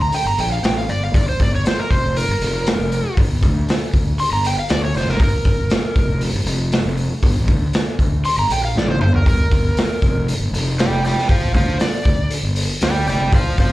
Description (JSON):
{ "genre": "blues rock power trio and southern rock", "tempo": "118 BPM", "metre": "4/4", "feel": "straight", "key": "G minor", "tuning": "A4 = 440 Hz", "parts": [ { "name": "overdriven slide guitar", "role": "melody", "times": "0.0-13.7 s", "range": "Bb4 to C6", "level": "-22 LUFS", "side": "right 1 dB", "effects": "slapback echo, plate reverb" }, { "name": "fuzz fingered electric bass", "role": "bass", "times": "0.0-13.7 s", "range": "F1 to D2", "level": "-20 LUFS", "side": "equal", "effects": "overdrive" }, { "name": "raw garage drum kit", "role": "drums", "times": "0.1-13.7 s", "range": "hi-hat, kick drum, snare drum, toms", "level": "-18 LUFS", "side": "equal", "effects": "none" } ], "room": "light reverb", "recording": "live gig heard through the venue's PA, club reverb", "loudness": "-15 LUFS", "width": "side -17 dB against mid", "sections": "0.0-13.7 A section", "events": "electric slide guitar solo 0.0-13.7; drum fill 8.8-9.3", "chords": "0.0 Gm", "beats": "0.13 0.64 | 1.15 1.66 2.17 2.67 | 3.18 3.69 4.20 4.70 | 5.21 5.72 6.22 6.73 | 7.24 7.74 8.25 8.76 | 9.27 9.77 10.28 10.79 | 11.30 11.81 12.31 12.82 | 13.33" }